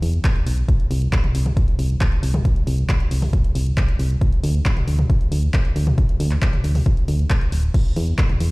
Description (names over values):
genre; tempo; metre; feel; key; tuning
uplifting trance; 136 BPM; 4/4; straight; unclear; A4 = 440 Hz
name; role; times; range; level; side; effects
solid FM bass; bass; 0.0-8.5 s; D1 to E2; -19 LUFS; equal; sidechain pumping
punchy analog drum machine; drums; 0.0-8.5 s; crash cymbal, handclaps, hi-hat, toms; -27 LUFS; left 1 dB; overdrive
electronic kick drum; drums; 0.2-8.3 s; none; -18 LUFS; equal; overdrive
room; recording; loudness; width
digital ambience; played on a big sound system in a bare room, stone room reverb; -17 LUFS; side -25 dB against mid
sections
0.0-8.5 A section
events
none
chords
none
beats
0.24 | 0.69 1.13 1.57 2.01 | 2.45 2.89 3.33 3.77 | 4.21 4.66 5.10 5.54 | 5.98 6.42 6.86 7.30 | 7.74 8.19